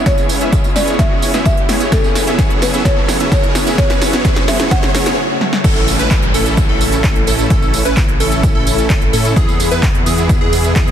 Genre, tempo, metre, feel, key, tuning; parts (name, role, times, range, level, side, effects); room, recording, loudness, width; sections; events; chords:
EDM, festival progressive house; 129 BPM; 4/4; straight; A4 = 442 Hz
buzzing marimba with medium mallets; melody; 0.0-5.2 s; A4 to F#5; -22 LUFS; equal; digital delay
lush unison pad; sustained chords; 0.0-10.9 s; B2 to F#4; -25 LUFS; left 1 dB; chorus, phaser, sidechain pumping
supersaw chords; riff; 0.0-10.9 s; B3 to E5; -19 LUFS; right 1 dB; sidechain pumping, low-pass filter, digital delay
detuned saw bass; bass; 0.0-10.9 s; A1 to A2; -22 LUFS; equal; sidechain pumping, high-pass filter
riser and downlifter; sound effects; 0.0-9.4 s; -24 LUFS; equal
big-room dance drum kit; drums; 0.1-10.9 s; crash cymbal, handclaps, hi-hat, snare drum, tambourine; -20 LUFS; right 1 dB; overdrive
electronic kick drum; drums; 0.1-10.9 s; -15 LUFS; equal; overdrive
plucky unison lead; arpeggios; 5.6-10.9 s; G#4 to B4; -20 LUFS; equal; phaser, sidechain pumping, digital delay
light reverb; dense, heavily limited modern master; -11 LUFS; side -9 dB against mid
0.0-5.6 A section; 5.6-10.9 B section
build-up 0.0-5.6; drum fill 0.0-5.2, 5.4; riser 0.0-5.2; break 5.2-5.6; drop 5.6-10.9
0.0 C#m7; 1.9 F#m; 5.6 A; 9.4 E